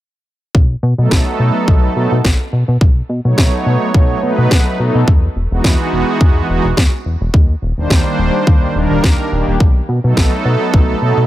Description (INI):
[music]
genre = nu-disco, nu disco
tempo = 106 BPM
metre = 4/4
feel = swing 54% on 16ths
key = B mixolydian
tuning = A4 = 440 Hz
[part]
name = chorused synth bass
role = bass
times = 0.5-11.3 s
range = D#1 to B2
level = -15 LUFS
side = equal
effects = none
[part]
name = electronic kick drum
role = drums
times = 0.5-10.9 s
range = none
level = -12 LUFS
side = equal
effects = none
[part]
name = warm analog pad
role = accompaniment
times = 1.0-11.2 s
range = D#3 to C#5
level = -17 LUFS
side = right 1 dB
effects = chorus, tremolo, sidechain pumping, tape echo
[part]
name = electronic snare drum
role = drums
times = 1.1-10.3 s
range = none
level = -20 LUFS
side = equal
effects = none
[sound]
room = little or no reverb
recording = none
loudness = -11 LUFS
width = side -14 dB against mid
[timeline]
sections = 0.5-11.3 A section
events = none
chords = 0.5 B7; 5.1 Emaj9; 7.3 D#maj7; 9.6 B7